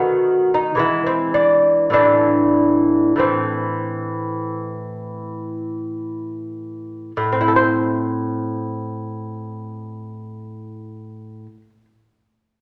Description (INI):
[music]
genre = classical, baroque-style dance for lute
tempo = 43-58 BPM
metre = 4/4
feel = rubato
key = A minor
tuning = A4 = 439 Hz
[part]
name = lute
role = solo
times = 0.0-11.8 s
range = A2 to C5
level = -20 LUFS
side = equal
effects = none
[sound]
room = wet large studio reverb, RT60 1.3 s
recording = none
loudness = -19 LUFS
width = mono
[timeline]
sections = 0.0-7.2 A section; 7.2-12.4 B section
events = slowing down 0.0-7.2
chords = 0.0 B7/D#; 0.8 E7; 1.9 Am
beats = 0.80 | 1.95 3.20 4.49 5.82 | 7.17 8.46 9.78 11.10